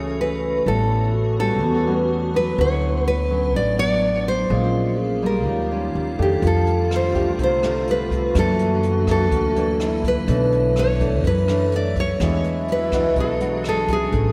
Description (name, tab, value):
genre	bossa nova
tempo	125 BPM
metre	4/4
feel	straight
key	unclear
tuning	A4 = 441 Hz
part	nylon-string guitar	melody	0.0-14.3 s	G4 to D5	-24 LUFS	equal	diffuse ambient delay
part	mellow hollow alto flute	second line	0.0-14.3 s	C#4 to Ab4	-32 LUFS	equal	none
part	nylon-string guitar	accompaniment	0.0-14.3 s	F#2 to G#4	-29 LUFS	equal	subtle chorus
part	vibraphone with medium mallets	accompaniment	0.0-14.2 s	A#3 to C#6	-34 LUFS	equal	none
part	icy glass pad	sustained chords	0.0-14.3 s	C#3 to C#5	-32 LUFS	equal	chorus, built-in reverb
part	upright bass	bass	0.0-14.3 s	A1 to F#2	-26 LUFS	equal	none
part	jazz brush drum kit	drums	6.4-14.2 s	hi-hat, kick drum, rim click	-30 LUFS	equal	none
room	moderate lush hall reverb, RT60 2.1 s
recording	dreamy mix soaked in reverb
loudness	-20 LUFS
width	mono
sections	0.0-14.1 A section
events	none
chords	0.0 F#m9; 0.7 A9; 2.6 Dmaj13; 4.5 Bbm7; 5.5 D#9; 6.4 F69; 8.4 F#7alt; 10.3 Bm11; 12.2 E9